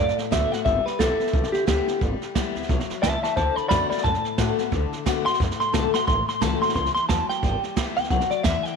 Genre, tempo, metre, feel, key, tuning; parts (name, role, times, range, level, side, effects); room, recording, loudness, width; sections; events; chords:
rockabilly; 177 BPM; 4/4; swing 59% on 8ths; D mixolydian; A4 = 440 Hz
electric guitar at the edge of break-up; melody; 0.0-8.8 s; G4 to C6; -24 LUFS; equal; wide subtle chorus, tape echo
picked steel-string acoustic guitar; accompaniment; 0.0-8.8 s; A2 to F#4; -28 LUFS; left 13 dB
upright bass; bass; 0.0-8.7 s; G1 to A2; -28 LUFS; equal
jazz brush drum kit; drums; 0.1-8.7 s; hi-hat, kick drum, snare drum; -27 LUFS; right 4 dB
light reverb; 1960s-style stereo; -21 LUFS; side -5 dB against mid
0.0-8.8 A section
clean electric guitar solo 0.0-8.8; drum fill 5.9
0.0 D6; 0.7 G6; 3.4 D6; 6.1 A6; 7.4 G6